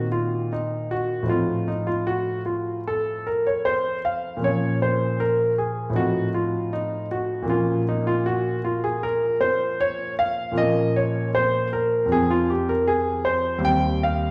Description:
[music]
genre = classical, baroque-style suite movement for grand piano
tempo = 78 BPM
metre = 4/4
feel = rubato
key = Bb minor, F minor from 10.6 s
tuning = A4 = 438 Hz
[part]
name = warm concert grand piano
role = solo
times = 0.0-14.3 s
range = Eb2 to G5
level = -23 LUFS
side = equal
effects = none
[sound]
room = wet recital hall reverb, RT60 1.5 s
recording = recorded in a church or concert hall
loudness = -23 LUFS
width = mono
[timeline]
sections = 0.0-14.3 A section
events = none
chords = 0.0 Ebm69/Bb; 1.3 F7/A; 4.4 Bbm; 5.9 F7/A; 7.5 Bbm; 12.1 F5; 13.6 Cm/Eb

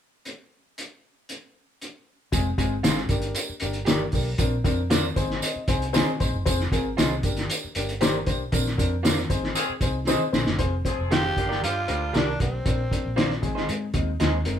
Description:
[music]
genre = uptempo 1960s-style soul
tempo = 116 BPM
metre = 4/4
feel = straight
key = F dorian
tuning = A4 = 441 Hz
[part]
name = cloth-damped thuddy drum kit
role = drums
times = 0.3-14.6 s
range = hi-hat, kick drum, snare drum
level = -25 LUFS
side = equal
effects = none
[part]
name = warm upright piano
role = accompaniment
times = 2.3-14.6 s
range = Ab3 to C6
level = -29 LUFS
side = left 4 dB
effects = none
[part]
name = vintage muted fingered electric bass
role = bass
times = 2.3-14.6 s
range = F1 to Ab2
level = -29 LUFS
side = equal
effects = none
[part]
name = tambourine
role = percussion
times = 2.3-10.5 s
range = none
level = -34 LUFS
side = right 6 dB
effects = none
[part]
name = electric guitar through a small old amp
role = stabs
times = 2.8-14.3 s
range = Eb4 to F5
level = -30 LUFS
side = right 3 dB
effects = none
[part]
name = warm horn section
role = second line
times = 9.6-12.4 s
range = Bb2 to Ab4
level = -31 LUFS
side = left 2 dB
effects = none
[part]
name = growling tenor saxophone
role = melody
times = 11.1-13.4 s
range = C4 to G4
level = -28 LUFS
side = right 1 dB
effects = none
[sound]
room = moderate studio reverb, RT60 0.6 s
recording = band playing live in one room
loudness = -22 LUFS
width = side -9 dB against mid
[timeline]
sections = 0.3-2.3 A section; 2.3-10.6 B section; 10.6-14.6 C section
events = upright piano fill 4.9-6.5; band accent 8.5-10.6; drum fill 10.1-10.6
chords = 0.3 N.C.; 2.3 Fm; 3.1 Gm; 4.4 Bbadd9; 5.2 Ab; 6.5 Fm; 7.2 Gm; 8.5 Bbadd9; 9.3 Ab; 10.6 Fm; 11.4 Gm; 12.7 Bbadd9; 13.4 Ab

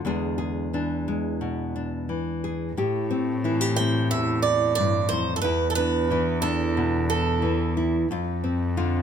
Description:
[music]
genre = acoustic folk-pop ballad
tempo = 90 BPM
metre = 4/4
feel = straight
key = A minor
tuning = A4 = 440 Hz
[part]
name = nylon-string guitar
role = accompaniment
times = 0.0-9.0 s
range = E2 to G#4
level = -25 LUFS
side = left 2 dB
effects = none
[part]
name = rich cello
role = bass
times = 2.7-9.0 s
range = E2 to A2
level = -27 LUFS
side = right 1 dB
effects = none
[part]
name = picked swing-style acoustic guitar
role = melody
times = 3.8-7.7 s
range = A4 to G5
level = -25 LUFS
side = right 5 dB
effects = plate reverb
[sound]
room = moderate small room ambience, RT60 0.5 s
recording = none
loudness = -22 LUFS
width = side -8 dB against mid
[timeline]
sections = 0.0-2.7 A section; 2.7-9.0 B section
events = none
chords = 0.0 E7; 2.7 Am7; 5.4 E7sus4; 8.1 Dm7/F

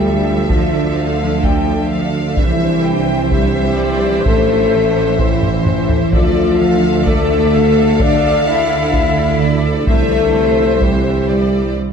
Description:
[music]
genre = cinematic, hybrid orchestral and electronic film score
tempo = 128 BPM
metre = 4/4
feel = straight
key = D minor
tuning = A4 = 445 Hz
[part]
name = clear chamber violin section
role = melody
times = 0.0-11.7 s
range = E5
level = -28 LUFS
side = left 6 dB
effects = none
[part]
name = clear studio violin section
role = second line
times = 0.0-11.8 s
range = C5 to G5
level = -24 LUFS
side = left 3 dB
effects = none
[part]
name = bright symphonic viola section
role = accompaniment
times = 0.0-11.7 s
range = D3 to C5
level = -24 LUFS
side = right 2 dB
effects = none
[part]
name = dark French horn section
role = sustained chords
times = 0.0-11.8 s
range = D4 to E5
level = -18 LUFS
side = left 6 dB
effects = none
[part]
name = ethereal airy pad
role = sustained chords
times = 0.0-11.8 s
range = D3 to D5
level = -22 LUFS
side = right 1 dB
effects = ensemble chorus, built-in reverb, phaser
[part]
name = rich symphonic cello section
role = bass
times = 0.0-11.8 s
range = D3 to E4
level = -20 LUFS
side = right 3 dB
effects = none
[part]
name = rich symphonic double bass section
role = bass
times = 0.0-11.7 s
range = A1 to D2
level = -21 LUFS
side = right 4 dB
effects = none
[part]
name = warm tuba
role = bass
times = 0.0-11.7 s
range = A1 to D2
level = -22 LUFS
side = right 4 dB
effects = none
[part]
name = impact and reverse cymbal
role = sound effects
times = 0.0-0.5, 11.8-11.9 s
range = none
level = barely audible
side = none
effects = none
[part]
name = solo taiko drums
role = drums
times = 0.5-11.3 s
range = none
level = -19 LUFS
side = equal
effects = none
[sound]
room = wet scoring stage reverb, RT60 1.5 s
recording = dark, warm production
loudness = -12 LUFS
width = side -6 dB against mid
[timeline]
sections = 0.0-11.9 A section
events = impact 0.0-0.5; drum fill 5.4-6.1; break 11.8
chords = 0.0 Dmadd9; 2.4 C; 4.3 Am; 6.1 Dmadd9; 9.9 C

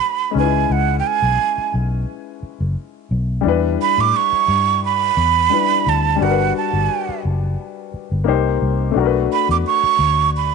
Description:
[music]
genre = lush 1970s-style soul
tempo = 87 BPM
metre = 4/4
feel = swing 54% on 16ths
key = unclear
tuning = A4 = 442 Hz
[part]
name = breathy jazz flute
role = melody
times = 0.0-10.5 s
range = F#5 to D6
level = -17 LUFS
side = right 13 dB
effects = none
[part]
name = warm baby grand piano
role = accompaniment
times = 0.0-10.5 s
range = G3 to C5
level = -22 LUFS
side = left 14 dB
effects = none
[part]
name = vintage muted fingered electric bass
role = bass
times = 0.4-10.5 s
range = F#1 to A2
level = -20 LUFS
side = left 1 dB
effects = none
[sound]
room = light reverb, small room ambience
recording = 1960s-style stereo with parts hard left and right, nothing above 10.3 kHz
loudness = -15 LUFS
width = side -5 dB against mid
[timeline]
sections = 0.0-10.5 A section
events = none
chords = 0.3 C#m7; 3.4 Em7; 6.2 Gmaj7; 8.3 Cm7; 9.0 Bm7

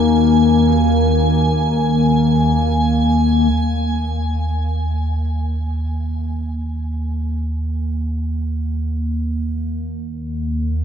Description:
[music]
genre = dark ambient drone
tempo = free time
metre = none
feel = none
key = Eb minor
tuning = A4 = 441 Hz
[part]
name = dark analog pad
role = sustained chords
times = 0.0-3.5 s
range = none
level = barely audible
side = none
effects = none
[part]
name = bright grand piano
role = arpeggios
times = 0.0-3.5 s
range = Cb3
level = -44 LUFS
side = left 1 dB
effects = none
[part]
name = analog drone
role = drone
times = 0.0-10.8 s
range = Eb2 to Bb3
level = -16 LUFS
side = left 1 dB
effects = chorus
[part]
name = icy glass pad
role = texture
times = 0.0-3.5 s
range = Ab5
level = -24 LUFS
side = right 2 dB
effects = chorus, built-in reverb
[sound]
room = wet huge ambient reverb, RT60 7.9 s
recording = dark, warm production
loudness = -16 LUFS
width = side -8 dB against mid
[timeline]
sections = 0.0-3.5 A section; 3.5-10.8 B section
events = filter sweep on synth drone 3.5-10.8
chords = 0.0 Dbsus2/Eb; 3.5 Eb5

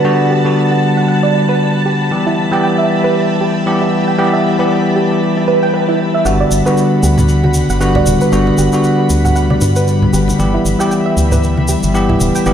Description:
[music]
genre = deep house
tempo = 116 BPM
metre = 4/4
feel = swing 58% on 16ths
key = G major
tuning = A4 = 440 Hz
[part]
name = airy breathy pad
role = sustained chords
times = 0.0-12.5 s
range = G3 to B5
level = -22 LUFS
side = left 1 dB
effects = chorus, vintage 12-bit sampler grit
[part]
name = bell-like tine electric piano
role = stabs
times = 0.0-12.5 s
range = D3 to G4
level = -13 LUFS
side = left 1 dB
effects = ping-pong delay
[part]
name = organ-like FM bass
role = bass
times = 0.0-12.5 s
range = D1 to G2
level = -15 LUFS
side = equal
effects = high-pass filter
[part]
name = soft string machine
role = texture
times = 0.0-6.3 s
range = A5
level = -24 LUFS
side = equal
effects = ensemble chorus
[part]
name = soft round pluck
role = arpeggios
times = 0.3-12.5 s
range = E4 to G5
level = -19 LUFS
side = right 4 dB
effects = chorus, tape echo
[part]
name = tube shaker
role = percussion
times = 6.3-12.5 s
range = none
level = -25 LUFS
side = left 1 dB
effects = none
[part]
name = congas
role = percussion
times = 7.2-12.3 s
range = none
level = -19 LUFS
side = right 1 dB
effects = none
[sound]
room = wet echo chamber reverb, RT60 2.2 s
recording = played on a big sound system in a bare room, stone room reverb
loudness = -11 LUFS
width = side -9 dB against mid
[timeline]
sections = 0.0-6.3 A section; 6.3-12.5 B section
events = build-up 0.0-6.3; drop 6.3-12.5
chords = 0.0 Gmaj7; 2.1 Em; 6.3 Gmaj7; 10.4 Em

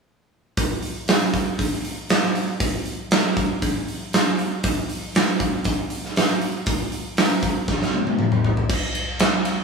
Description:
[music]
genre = metal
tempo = 118 BPM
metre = 4/4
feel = straight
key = none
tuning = none
[part]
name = big rock drum kit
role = drums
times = 0.6-9.6 s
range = crash cymbal, hi-hat, kick drum, ride cymbal, snare drum, toms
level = -20 LUFS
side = right 1 dB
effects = none
[sound]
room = light reverb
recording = band playing live in one room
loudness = -20 LUFS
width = side -4 dB against mid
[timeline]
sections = 0.6-8.7 A section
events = drum fill 7.7-8.7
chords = none

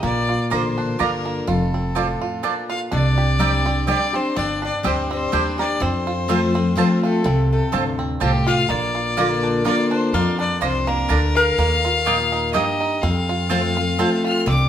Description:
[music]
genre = bluegrass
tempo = 125 BPM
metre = 3/4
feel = swing 54% on 8ths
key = F mixolydian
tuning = A4 = 445 Hz
[part]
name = bluegrass banjo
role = melody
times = 0.0-14.7 s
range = Bb3 to Bb4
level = -28 LUFS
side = right 5 dB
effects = none
[part]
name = clear fiddle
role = melody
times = 0.0-14.7 s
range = G4 to F6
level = -24 LUFS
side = left 3 dB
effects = none
[part]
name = picked steel-string acoustic guitar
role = accompaniment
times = 0.0-14.7 s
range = F2 to G4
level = -22 LUFS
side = left 2 dB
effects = none
[part]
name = upright bass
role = bass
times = 0.0-14.7 s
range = F1 to F2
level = -23 LUFS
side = right 1 dB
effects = none
[part]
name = mandolin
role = stabs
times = 0.5-14.1 s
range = Bb3 to Bb5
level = -25 LUFS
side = right 6 dB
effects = none
[part]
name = lap resonator guitar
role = second line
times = 2.7-14.7 s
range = A3 to Bb4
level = -27 LUFS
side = left 3 dB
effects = none
[sound]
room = wet stone room reverb, RT60 1.0 s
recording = band playing live in one room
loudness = -17 LUFS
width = side -10 dB against mid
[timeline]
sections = 0.0-2.9 A section; 2.9-14.5 B section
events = none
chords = 0.0 Bb; 1.5 F6; 2.9 Csus2; 5.8 F; 8.7 Bb; 11.6 Ebadd9; 13.0 F

